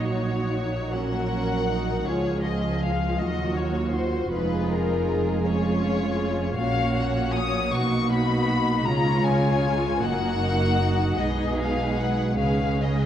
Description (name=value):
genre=classical, slow romantic movement for string orchestra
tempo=53 BPM (dotted quarters)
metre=6/8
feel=uneven beats, rubato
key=F# major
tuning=A4 = 441 Hz
part: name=muted chamber violin section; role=melody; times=0.0-13.1 s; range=A#4 to D#6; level=-29 LUFS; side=left 7 dB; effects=none
part: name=muted chamber violin section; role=second line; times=0.0-13.1 s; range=E#4 to C#5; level=-30 LUFS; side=left 1 dB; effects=none
part: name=muted chamber viola section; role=accompaniment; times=0.0-13.1 s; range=E#3 to E#4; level=-27 LUFS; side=right 2 dB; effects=none
part: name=muted chamber cello section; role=bass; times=0.0-13.1 s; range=C#2 to C#3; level=-29 LUFS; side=right 1 dB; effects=none
part: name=muted chamber double bass section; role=bass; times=0.0-13.1 s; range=E#1 to D#2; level=-29 LUFS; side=right 1 dB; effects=none
room=wet concert hall reverb, RT60 2.4 s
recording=dark, warm production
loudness=-22 LUFS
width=side -10 dB against mid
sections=0.0-13.1 A section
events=none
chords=0.0 F#/A#; 2.1 C#; 3.2 D#m9; 4.4 C#/E#; 6.6 F#/A#; 7.7 Bmaj9; 8.9 C#; 10.0 F#; 11.2 G#m/B; 12.4 C#5